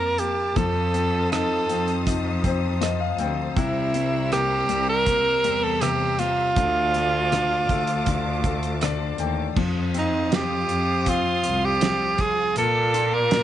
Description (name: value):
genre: pop ballad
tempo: 80 BPM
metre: 4/4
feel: straight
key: unclear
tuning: A4 = 445 Hz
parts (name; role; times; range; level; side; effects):
- breathy alto saxophone; melody; 0.0-13.4 s; Eb4 to Bb4; -22 LUFS; right 2 dB; slapback echo
- clear concert grand piano; accompaniment; 0.0-13.4 s; C3 to G5; -28 LUFS; left 9 dB; none
- clear studio string section; sustained chords; 0.0-13.4 s; Bb3 to E6; -33 LUFS; left 2 dB; none
- rich studio cello section; bass; 0.0-13.4 s; C2 to Bb2; -27 LUFS; right 1 dB; none
- natural country drum kit; drums; 0.2-13.4 s; crash cymbal, hi-hat, kick drum, rim click, snare drum; -27 LUFS; right 2 dB; none
room: light reverb, small room ambience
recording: 1960s-style stereo, nothing above 10.7 kHz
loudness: -20 LUFS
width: side -11 dB against mid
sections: 0.0-9.6 A section; 9.6-13.4 B section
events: grand piano fill 2.1-3.6, 8.4-9.6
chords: 0.0 Bbmaj7; 0.6 F7; 3.6 C7; 6.6 Dm7; 9.6 F5; 12.6 Bbmaj7